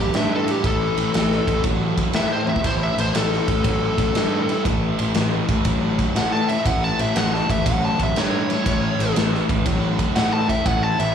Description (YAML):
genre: blues rock power trio and southern rock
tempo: 120 BPM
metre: 4/4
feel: swing 67% on 8ths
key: A mixolydian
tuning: A4 = 440 Hz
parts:
  - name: fuzz lead guitar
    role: melody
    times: 0.0-11.1 s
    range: G4 to A5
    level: -24 LUFS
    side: left 1 dB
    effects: distortion, plate reverb, slapback echo
  - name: fuzz guitar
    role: riff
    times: 0.0-11.1 s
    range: A2 to F#3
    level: -24 LUFS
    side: left 1 dB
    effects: distortion, slapback echo
  - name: fuzz picked electric bass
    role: bass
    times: 0.0-11.1 s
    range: A1 to A2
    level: -23 LUFS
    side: equal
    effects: overdrive
  - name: big rock drum kit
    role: drums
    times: 0.1-11.1 s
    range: kick drum, ride cymbal, snare drum, toms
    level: -24 LUFS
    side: equal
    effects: none
  - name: overdriven tonewheel organ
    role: sustained chords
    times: 10.7-11.1 s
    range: C#4 to C#5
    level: -32 LUFS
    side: right 3 dB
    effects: slow rotary speaker, chorus vibrato, plate reverb
room: light reverb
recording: live gig heard through the venue's PA, club reverb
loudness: -18 LUFS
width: side -8 dB against mid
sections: 0.0-11.1 A section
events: lead electric guitar solo 0.0-11.1; drum fill 2.4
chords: 0.0 A